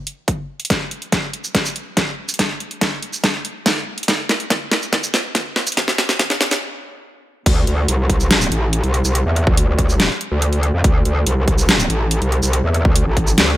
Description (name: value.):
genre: heavy wobble dubstep.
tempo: 142 BPM.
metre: 4/4.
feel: half-time.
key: unclear.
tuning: A4 = 440 Hz.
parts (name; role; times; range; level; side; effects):
dubstep drum kit; drums; 0.1-13.5 s; crash cymbal, hi-hat, shaker, snare drum; -18 LUFS; equal; overdrive.
electronic kick drum; drums; 0.3-13.3 s; none; -18 LUFS; equal; overdrive.
metallic wobble bass; bass; 7.5-13.6 s; A1 to F2; -17 LUFS; equal; distortion, chorus, overdrive.
room: little or no reverb.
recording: high-pass filter.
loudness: -16 LUFS.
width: side -15 dB against mid.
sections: 0.0-7.5 A section; 7.5-13.6 B section.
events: build-up 0.0-7.5; drum fill 0.7-6.6; stop 6.6-7.5; drop 7.5-13.6.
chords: none.